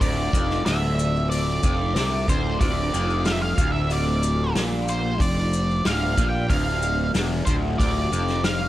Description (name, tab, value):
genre	psychedelic rock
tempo	93 BPM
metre	4/4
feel	straight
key	D minor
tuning	A4 = 440 Hz
part	octave-fuzz lead guitar	melody	0.0-8.7 s	C5 to G5	-27 LUFS	right 1 dB	distortion, tape echo
part	mellow tonewheel organ	sustained chords	0.0-8.7 s	A3 to A4	-36 LUFS	right 4 dB	none
part	crunchy overdriven guitar	riff	0.0-8.7 s	D2 to C3	-26 LUFS	left 1 dB	phaser
part	fuzz fingered electric bass	bass	0.0-8.7 s	D1 to C2	-25 LUFS	equal	overdrive
part	vintage drum kit	drums	0.0-8.6 s	hi-hat, kick drum, snare drum	-26 LUFS	equal	none
part	maracas	percussion	0.0-8.6 s	none	-37 LUFS	left 7 dB	none
room	little or no reverb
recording	none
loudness	-20 LUFS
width	side -14 dB against mid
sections	0.0-8.7 A section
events	none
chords	0.0 Dm